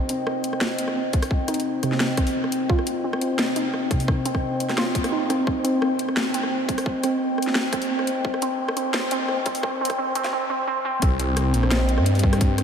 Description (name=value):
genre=half-time drum and bass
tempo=173 BPM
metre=4/4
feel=half-time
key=C minor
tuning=A4 = 441 Hz
part: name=dark analog pad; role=sustained chords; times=0.0-12.6 s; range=C4 to G5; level=-26 LUFS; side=left 1 dB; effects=wide subtle chorus, sidechain pumping
part: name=warbly dusty pluck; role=arpeggios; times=0.1-11.0 s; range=C3 to F4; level=-27 LUFS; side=right 2 dB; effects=chorus, ping-pong delay
part: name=drum and bass drum kit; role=drums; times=0.1-12.6 s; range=hi-hat, rim click, snare drum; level=-27 LUFS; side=equal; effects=overdrive, studio reverb
part: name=electronic kick drum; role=drums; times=1.1-12.5 s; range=none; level=-23 LUFS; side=equal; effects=overdrive, studio reverb
part: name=phased detuned saw bass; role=bass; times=11.0-12.6 s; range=Bb1 to G2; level=-20 LUFS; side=equal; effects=phaser
room=wet huge ambient reverb, RT60 4.0 s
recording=dreamy mix soaked in reverb, high-pass filter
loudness=-21 LUFS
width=side -7 dB against mid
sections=0.0-11.0 A section; 11.0-12.6 B section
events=build-up 0.0-11.0; filter sweep on synth pluck 0.0-11.0; drop 11.0-12.6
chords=0.0 Cm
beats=0.27 0.62 0.96 | 1.31 1.66 2.01 2.35 | 2.70 3.05 3.39 3.74 | 4.09 4.43 4.78 5.13 | 5.47 5.82 6.17 6.51 | 6.86 7.21 7.55 7.90 | 8.25 8.60 8.94 9.29 | 9.64 9.98 10.33 10.68 | 11.02 11.37 11.72 12.06 | 12.41